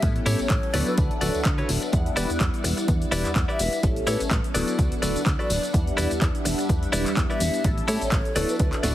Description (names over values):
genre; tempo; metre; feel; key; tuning
filtered disco house; 126 BPM; 4/4; swing 55% on 16ths; E dorian; A4 = 438 Hz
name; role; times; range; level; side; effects
breathy mellow concert flute; melody; 0.0-8.7 s; B4 to E5; -32 LUFS; left 2 dB; sidechain pumping, ping-pong delay
funky polysynth comp; accompaniment; 0.0-8.9 s; F#3 to F#5; -30 LUFS; left 1 dB; chorus, phaser, sidechain pumping
string machine, full ensemble; sustained chords; 0.0-8.9 s; G3 to G5; -33 LUFS; equal; ensemble chorus, vintage 12-bit sampler grit, sidechain pumping
plucky analog bass; bass; 0.0-8.9 s; D1 to A2; -27 LUFS; equal; tube saturation, sidechain pumping
electronic kick drum; drums; 0.0-8.7 s; none; -24 LUFS; equal; overdrive
punchy analog drum machine; drums; 0.0-8.9 s; cabasa, handclaps, hi-hat, snare drum; -31 LUFS; left 1 dB; overdrive, sidechain pumping on hats, sidechain pumping on perc
tambourine; percussion; 0.0-8.9 s; none; -37 LUFS; left 2 dB; sidechain pumping on perc
direct-recorded clean electric guitar; riff; 0.3-8.9 s; E4 to D5; -28 LUFS; equal; sidechain pumping
room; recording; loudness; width
little or no reverb; heavily compressed radio sound, multiband compression; -21 LUFS; side -13 dB against mid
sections
0.0-8.9 A section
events
none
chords
0.0 A7; 0.7 D6; 1.9 Em7; 3.8 A7; 4.5 D6; 5.7 Em7; 7.6 A7; 8.4 D6